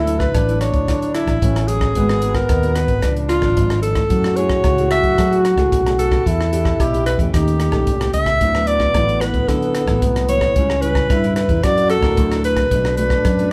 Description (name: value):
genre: samba and choro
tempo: 112 BPM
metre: 4/4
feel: straight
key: unclear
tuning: A4 = 440 Hz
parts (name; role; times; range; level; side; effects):
- clear alto saxophone; melody; 0.0-13.5 s; E4 to E5; -22 LUFS; equal; none
- mellow trombone; second line; 0.0-13.5 s; B3 to F#4; -24 LUFS; equal; none
- nylon-string guitar; accompaniment; 0.0-13.5 s; G#2 to A#4; -28 LUFS; equal; none
- fingered electric bass; bass; 0.0-13.5 s; G#1 to F#3; -23 LUFS; equal; none
- compact cocktail drum kit; drums; 0.1-13.5 s; hi-hat, kick drum, rim click; -24 LUFS; equal; none
room: moderate large studio reverb, RT60 0.9 s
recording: band playing live in one room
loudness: -17 LUFS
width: mono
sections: 0.0-13.5 A section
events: none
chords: 0.0 D69; 2.0 G#m9; 3.0 C#7b9; 4.1 F#m9; 6.3 Em7; 7.3 D#7#11; 8.4 D69; 10.6 C#m7b5; 11.6 F#7alt; 12.7 Bm7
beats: 0.35 0.89 1.42 | 1.96 2.50 3.04 3.57 | 4.11 4.65 5.18 5.72 | 6.26 6.80 7.34 7.87 | 8.41 8.95 9.49 10.03 | 10.56 11.10 11.64 12.18 | 12.72 13.25